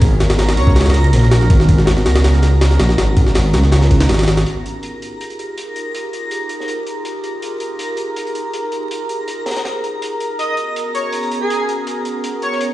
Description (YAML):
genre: drum and bass, jungle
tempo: 162 BPM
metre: 4/4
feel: straight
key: F minor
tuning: A4 = 440 Hz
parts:
  - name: warbly tape-like pad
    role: sustained chords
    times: 0.0-12.7 s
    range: Cb4 to Bb4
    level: -23 LUFS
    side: right 1 dB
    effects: chorus, built-in reverb, vintage 12-bit sampler grit
  - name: dark detuned saw bass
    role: bass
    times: 0.0-4.4 s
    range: Ab1 to Db2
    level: -12 LUFS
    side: equal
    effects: none
  - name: crunchy breakbeat drum kit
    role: drums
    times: 0.0-12.7 s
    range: hi-hat, snare drum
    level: -30 LUFS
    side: equal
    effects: high-pass filter on hats, high-pass filter on snare, high-pass filter on room
  - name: jungle sampler-style drum kit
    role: drums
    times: 0.0-4.5 s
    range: hi-hat, kick drum, ride cymbal, snare drum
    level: -15 LUFS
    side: equal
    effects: none
  - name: backwards swelling texture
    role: texture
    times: 0.0-12.7 s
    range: Bb5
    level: -27 LUFS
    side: equal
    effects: built-in reverb
  - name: airy dreamy lead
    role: melody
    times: 0.6-0.7, 10.4-12.6 s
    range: Ab4 to Eb5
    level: -23 LUFS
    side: right 1 dB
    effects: chorus, dub echo
room: light reverb, digital ambience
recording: played on a big sound system in a bare room, large studio reverb, vinyl crackle, nothing above 10.3 kHz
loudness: -14 LUFS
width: side -16 dB against mid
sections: 0.0-4.5 A section; 4.5-12.7 B section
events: drop 0.0-4.5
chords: 0.0 Abm11; 4.5 Fm11; 10.4 Abm11